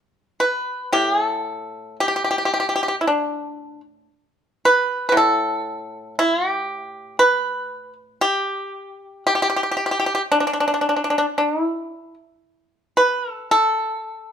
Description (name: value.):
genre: chinese traditional, Chinese solo plucked strings.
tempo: 57 BPM.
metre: 4/4.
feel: rubato.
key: unclear.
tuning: A4 = 441 Hz.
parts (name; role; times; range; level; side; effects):
pipa; solo; 0.0-14.3 s; A2 to B4; -18 LUFS; equal; none.
room: light reverb.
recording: band playing live in one room.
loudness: -18 LUFS.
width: side -8 dB against mid.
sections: 0.0-14.3 A section.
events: none.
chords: none.